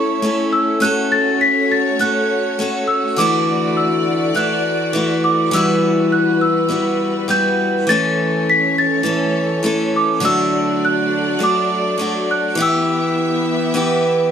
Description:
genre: acoustic folk duo or small band.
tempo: 102 BPM.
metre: 4/4.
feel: straight.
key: E dorian.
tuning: A4 = 439 Hz.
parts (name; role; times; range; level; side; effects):
large celesta; melody; 0.0-14.3 s; C#6 to B6; -19 LUFS; right 1 dB; plate reverb.
picked steel-string acoustic guitar; accompaniment; 0.0-14.3 s; D3 to A4; -18 LUFS; left 1 dB; none.
warm studio string section; sustained chords; 0.0-14.3 s; E3 to E5; -22 LUFS; right 1 dB; none.
room: moderate studio ambience, RT60 0.5 s.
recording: none.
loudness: -14 LUFS.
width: side -8 dB against mid.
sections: 0.0-14.3 A section.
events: none.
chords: 0.0 A; 0.8 F#m/A; 3.2 Dadd9; 5.5 Emadd9; 7.9 A/E; 10.2 D; 12.6 Em.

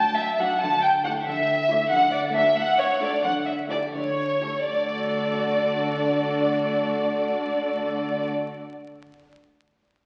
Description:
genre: quick classical-period movement for string orchestra.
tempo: 80-94 BPM (dotted quarters).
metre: 6/8.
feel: rubato.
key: D major.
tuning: A4 = 439 Hz.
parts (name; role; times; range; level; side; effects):
warm studio violin section; melody; 0.0-8.3 s; C#5 to A5; -25 LUFS; equal; none.
warm studio cello section; bass; 0.0-8.3 s; A2 to D3; -35 LUFS; equal; none.
clear studio violin section; second line; 0.4-8.3 s; F#4 to D5; -38 LUFS; equal; none.
warm studio viola section; accompaniment; 0.4-8.3 s; F#3 to E4; -35 LUFS; equal; none.
room: wet scoring stage reverb, RT60 1.7 s.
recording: very old 78 rpm record, vinyl crackle, nothing above 10.7 kHz.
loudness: -24 LUFS.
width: mono.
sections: 0.0-4.7 A section; 4.7-7.5 B section.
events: slowing down 1.3-4.7.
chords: 0.0 D; 0.6 A7/D; 1.9 D; 3.2 A7/D; 4.7 D.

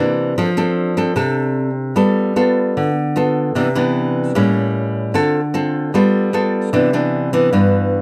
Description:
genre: bossa nova.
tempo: 151 BPM.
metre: 4/4.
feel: straight.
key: C major.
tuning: A4 = 444 Hz.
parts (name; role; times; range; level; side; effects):
nylon-string guitar; solo; 0.0-8.0 s; G2 to A4; -17 LUFS; equal; none.
room: little or no reverb.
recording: close, detailed microphones.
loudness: -17 LUFS.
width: mono.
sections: 0.0-6.7 A section; 6.7-8.0 B section.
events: none.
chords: 0.4 F6; 2.0 G9; 3.5 Cmaj9; 4.3 A7b9; 5.1 Dm7; 5.9 G9; 6.7 Cmaj9.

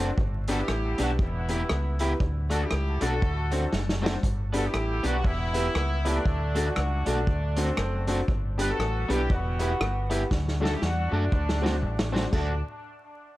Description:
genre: ska.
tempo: 118 BPM.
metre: 4/4.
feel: swing 60% on 8ths.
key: D major.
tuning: A4 = 440 Hz.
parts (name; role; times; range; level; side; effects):
electric guitar at the edge of break-up; accompaniment; 0.0-12.5 s; A3 to G4; -33 LUFS; right 2 dB; none.
clear upright piano; stabs; 0.0-12.6 s; D4 to C5; -33 LUFS; left 2 dB; none.
deep dub fingered electric bass; bass; 0.0-12.6 s; E1 to F#2; -28 LUFS; equal; none.
vintage drum kit; drums; 0.2-12.5 s; crash cymbal, hi-hat, kick drum, rim click, snare drum; -30 LUFS; equal; none.
clear horn section; melody; 0.5-12.6 s; A3 to B4; -32 LUFS; equal; dub echo.
room: little or no reverb.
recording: vinyl crackle.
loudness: -24 LUFS.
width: side -16 dB against mid.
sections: 0.0-12.3 A section; 12.3-13.4 B section.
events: drum fill 3.7-4.2, 10.3-12.3.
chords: 0.2 G; 1.2 Em; 2.2 D; 3.2 D7; 4.2 G; 5.2 Em; 6.3 D; 7.3 D7; 8.3 G; 9.3 Em; 10.3 D; 11.3 D7; 12.3 D.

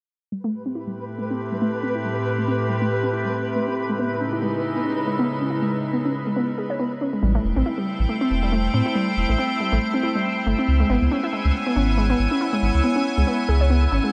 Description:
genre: IDM.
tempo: 139 BPM.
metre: 4/4.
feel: swing 56% on 16ths.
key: unclear.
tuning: A4 = 440 Hz.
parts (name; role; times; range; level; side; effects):
icy glass pad; sustained chords; 0.7-14.1 s; A2 to G#5; -28 LUFS; equal; chorus, built-in reverb, vintage 12-bit sampler grit.
warbly dusty pluck; arpeggios; 0.3-14.1 s; G3 to C#5; -27 LUFS; equal; chorus, delay.
flickering grainy texture; texture; 0.6-14.1 s; B4 to E6; -35 LUFS; equal; built-in reverb.
warm sub bass; bass; 7.2-14.0 s; E1 to A2; -22 LUFS; equal; none.
room: light reverb.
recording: none.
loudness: -22 LUFS.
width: mono.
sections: 0.3-7.2 A section; 7.2-14.1 B section.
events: filter sweep on synth pluck 0.3-7.2.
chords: 0.3 Am7; 3.8 C#m7; 7.2 Am7; 10.7 C#m7.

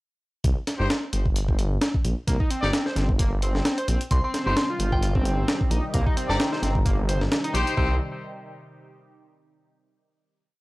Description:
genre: breakbeat, breaks.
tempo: 131 BPM.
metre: 4/4.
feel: swing 55% on 16ths.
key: C minor.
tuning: A4 = 439 Hz.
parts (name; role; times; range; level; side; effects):
detuned saw bass; bass; 0.4-8.0 s; G1 to C2; -25 LUFS; equal; none.
breakbeat sampler-style drum kit; drums; 0.4-7.9 s; hi-hat, kick drum, snare drum; -24 LUFS; equal; studio reverb.
bright horn section; stabs; 0.8-7.9 s; Eb4 to D5; -30 LUFS; left 2 dB; analog delay.
overdriven synth lead; riff; 2.3-8.0 s; Bb3 to C5; -31 LUFS; equal; distortion, analog chorus, analog delay.
glassy synth bell; melody; 4.1-6.8 s; G5 to C6; -31 LUFS; equal; chorus, tremolo, old record sound, vintage 12-bit sampler grit, analog delay.
phased analog pad; sustained chords; 4.3-8.0 s; C3 to G4; -35 LUFS; equal; phaser, chorus, vintage 12-bit sampler grit, sidechain pumping.
room: digital ambience.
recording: dry, gritty hardware recording, cassette tape.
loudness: -21 LUFS.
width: side -20 dB against mid.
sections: 0.4-7.8 groove; 7.8-9.6 final chord.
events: none.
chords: 0.4 Cm.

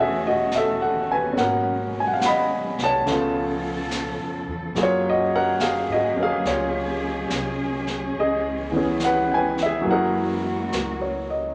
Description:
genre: jazz ballad.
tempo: 71 BPM.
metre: 4/4.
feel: swing 67% on 8ths.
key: F# major.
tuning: A4 = 440 Hz.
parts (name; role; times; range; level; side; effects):
clear baby grand piano; accompaniment; 0.0-11.5 s; C#3 to B5; -24 LUFS; equal; none.
dark studio cello section; sustained chords; 0.0-11.5 s; B2 to A4; -32 LUFS; equal; none.
upright bass; bass; 0.0-11.5 s; E1 to G#2; -39 LUFS; equal; none.
jazz brush drum kit; drums; 0.5-11.5 s; brushed snare drum, hi-hat, snare drum; -36 LUFS; equal; none.
room: moderate large studio reverb, RT60 1.3 s.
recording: none.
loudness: -23 LUFS.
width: mono.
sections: 0.0-11.5 A section.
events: none.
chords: 0.0 A69; 1.4 G#m11; 3.1 C#7alt; 4.8 F#maj9; 8.2 C#m7; 9.9 F#9.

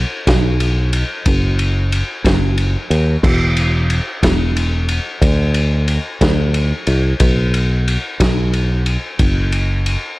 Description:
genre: folk rock and heartland rock.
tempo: 60 BPM (dotted quarters).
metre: 6/8.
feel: straight.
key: unclear.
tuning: A4 = 441 Hz.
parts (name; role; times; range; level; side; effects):
fingered electric bass; bass; 0.0-10.0 s; E1 to D#2; -15 LUFS; equal; none.
vintage drum kit; drums; 0.3-10.0 s; crash cymbal, kick drum, ride cymbal, snare drum; -18 LUFS; equal; none.
room: little or no reverb.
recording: dark, warm production.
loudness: -14 LUFS.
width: side -20 dB against mid.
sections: 0.0-10.2 A section.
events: none.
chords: none.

